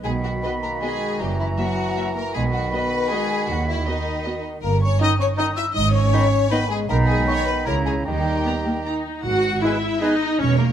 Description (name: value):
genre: cinematic, playful, whimsical film cue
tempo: 157 BPM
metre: 3/4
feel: straight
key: B major, G# minor from 4.6 s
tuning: A4 = 440 Hz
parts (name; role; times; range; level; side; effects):
- hollow concert flute; second line; 0.0-10.1 s; D#5 to E6; -30 LUFS; left 2 dB; none
- rich studio violin section; second line; 0.0-10.1 s; D#4 to G#5; -27 LUFS; left 4 dB; none
- warm clarinet; second line; 0.0-10.1 s; D#4 to G#4; -32 LUFS; equal; none
- warm oboe; second line; 0.0-10.2 s; B4 to B5; -30 LUFS; right 2 dB; none
- rich studio viola section; accompaniment; 0.0-10.7 s; A#3 to F#4; -25 LUFS; equal; none
- warm bassoon; accompaniment; 0.0-10.2 s; C#3 to G#3; -30 LUFS; right 2 dB; none
- mellow French horn section; sustained chords; 0.0-10.2 s; D#3 to E4; -30 LUFS; left 4 dB; none
- warm studio cello section; bass; 0.0-10.7 s; D#2 to D#3; -26 LUFS; right 2 dB; none
- warm studio double bass section; bass; 0.0-10.7 s; E1 to D#2; -25 LUFS; right 3 dB; none
- warm studio violin section; melody; 0.4-10.7 s; A#4 to A#5; -31 LUFS; left 2 dB; none
room: moderate scoring stage reverb, RT60 1.8 s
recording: close, detailed microphones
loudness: -19 LUFS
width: side -9 dB against mid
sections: 0.0-9.2 A section; 9.2-10.7 B section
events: none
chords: 0.0 B; 1.2 F#7; 2.4 B; 3.5 B/D#; 4.6 D#7/G; 5.8 G#m; 6.9 Bmaj13; 7.7 A#dim/C#; 8.1 D#; 9.2 G#m